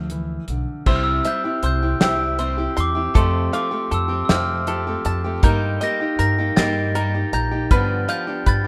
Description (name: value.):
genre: indie folk with a building arrangement.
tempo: 53 BPM (dotted quarters).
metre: 6/8.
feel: straight.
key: unclear.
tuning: A4 = 440 Hz.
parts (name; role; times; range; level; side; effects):
glockenspiel with soft plastic mallets; melody; 0.0-8.7 s; C6 to Bb6; -26 LUFS; equal; none.
fingerpicked steel-string acoustic guitar; accompaniment; 0.0-0.9 s; D3 to A3; -32 LUFS; equal; none.
upright bass; bass; 0.0-8.7 s; Bb1 to G2; -26 LUFS; equal; none.
cloth-damped thuddy drum kit; drums; 0.1-8.6 s; crash cymbal, hi-hat, kick drum, snare drum; -22 LUFS; equal; none.
picked steel-string acoustic guitar; accompaniment; 0.9-8.7 s; F2 to G4; -27 LUFS; equal; none.
bluegrass banjo; arpeggios; 0.9-8.7 s; A4 to C6; -31 LUFS; equal; none.
room: light reverb, small room reverb.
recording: rough home demo mix.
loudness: -21 LUFS.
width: mono.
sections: 0.9-8.7 A section.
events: none.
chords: 0.0 Dm; 0.9 C; 3.1 Fadd9; 5.4 Eb/G; 7.7 G7.